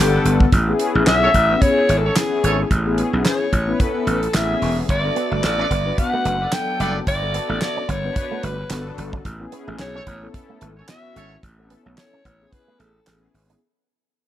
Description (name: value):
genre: early-eighties boogie funk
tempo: 110 BPM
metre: 4/4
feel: swing 56% on 16ths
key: A major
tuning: A4 = 441 Hz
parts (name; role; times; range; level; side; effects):
- growling alto saxophone; melody; 0.0-13.3 s; G4 to G5; -22 LUFS; left 1 dB; none
- mellow synth brass; accompaniment; 0.0-13.6 s; F#3 to F#5; -24 LUFS; left 4 dB; chorus
- gritty slap bass; bass; 0.0-13.5 s; E1 to B1; -22 LUFS; equal; overdrive
- damped 70s drum kit; drums; 0.3-13.6 s; handclaps, hi-hat, kick drum, snare drum; -20 LUFS; right 1 dB; none
- clear horn section; second line; 1.2-11.3 s; C#4 to D5; -26 LUFS; right 2 dB; none
- electric guitar with an envelope filter; riff; 5.0-13.6 s; G3 to C#4; -33 LUFS; right 6 dB; ensemble chorus
room: small room ambience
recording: none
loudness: -17 LUFS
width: side -12 dB against mid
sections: 0.0-13.6 A section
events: fade-out 0.0-13.6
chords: 0.0 Gmaj9; 0.5 Amaj7; 4.9 Gmaj9; 9.3 Amaj7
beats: | 0.53 1.07 1.62 2.16 | 2.71 3.25 3.80 4.34 | 4.89 5.44 5.98 6.53 | 7.07 7.62 8.16 8.71 | 9.25 9.80 10.35 10.89 | 11.44 11.98 12.53 13.07